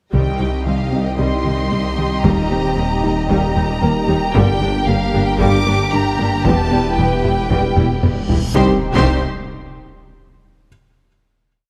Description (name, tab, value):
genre	cinematic, hybrid orchestral and electronic film score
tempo	114 BPM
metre	4/4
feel	straight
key	C minor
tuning	A4 = 440 Hz
part	rich studio violin section	melody	0.1-9.3 s	F5 to D6	-27 LUFS	equal	none
part	clear symphonic violin section	second line	0.1-9.2 s	G4 to Eb5	-29 LUFS	equal	none
part	warm symphonic viola section	accompaniment	0.1-9.2 s	G3 to E4	-29 LUFS	equal	none
part	hollow soft pad	sustained chords	0.1-8.9 s	G3 to G5	-25 LUFS	equal	chorus
part	mellow French horn section	sustained chords	0.1-8.8 s	G3 to G4	-30 LUFS	equal	none
part	warm trombone section	sustained chords	0.1-8.8 s	D3 to G3	-28 LUFS	equal	none
part	soft round pluck	arpeggios	0.1-8.4 s	C3 to G4	-27 LUFS	equal	none
part	clear symphonic cello section	bass	0.1-9.2 s	C2 to G2	-26 LUFS	equal	none
part	clear symphonic double bass section	bass	0.1-9.2 s	E1 to Eb2	-25 LUFS	equal	none
part	phased detuned saw bass	bass	0.1-9.3 s	Eb1 to C2	-25 LUFS	equal	phaser
part	solo taiko drums	drums	0.1-10.0 s	none	-24 LUFS	equal	none
part	felt-muted upright piano	texture	0.4-8.6 s	Bb3 to G5	-34 LUFS	equal	none
part	reverse cymbal and impact	sound effects	8.1-10.7 s	none	-32 LUFS	equal	none
room	moderate scoring stage reverb, RT60 1.9 s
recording	none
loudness	-17 LUFS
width	mono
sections	0.1-8.6 theme; 8.6-10.7 final chord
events	drum fill 7.8-8.6; reverse cymbal 8.1-8.6; impact 8.6-10.7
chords	0.1 Cm; 2.2 Eb; 4.4 Gm; 6.5 Em; 8.6 Cm